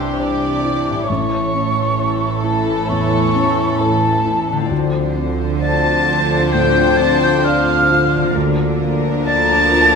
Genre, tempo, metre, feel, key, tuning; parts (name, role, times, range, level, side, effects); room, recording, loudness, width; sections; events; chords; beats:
cinematic, emotional film score for orchestra; 66 BPM; 4/4; rubato; D minor; A4 = 440 Hz
warm symphonic violin section; melody; 0.0-10.0 s; G4 to C5; -23 LUFS; left 7 dB
concert flute; second line; 0.0-10.0 s; A5 to A6; -18 LUFS; right 1 dB
dark studio violin section; second line; 0.0-10.0 s; A4 to A5; -25 LUFS; left 1 dB
dark chamber viola section; accompaniment; 0.0-10.0 s; E3 to E4; -23 LUFS; equal
felt-muted upright piano; accompaniment; 0.0-10.0 s; A1 to D5; -23 LUFS; left 2 dB
dark French horn section; sustained chords; 0.0-10.0 s; E3 to E4; -25 LUFS; left 4 dB
concert harp; arpeggios; 0.0-10.0 s; A2 to D5; -29 LUFS; left 8 dB
rich symphonic double bass section; bass; 0.0-10.0 s; A1 to D2; -23 LUFS; right 7 dB
warm symphonic cello section; bass; 0.0-10.0 s; A2 to D3; -24 LUFS; right 4 dB
wet scoring stage reverb, RT60 1.4 s; minimal, uncompressed stereo recording; -14 LUFS; side -5 dB against mid
0.0-10.0 A section
0.0 Cadd9; 1.1 A; 4.7 Dm7; 8.3 Bb/D
0.18 | 1.09 1.99 2.89 3.80 | 4.71 5.62 6.53 7.44 | 8.35 9.27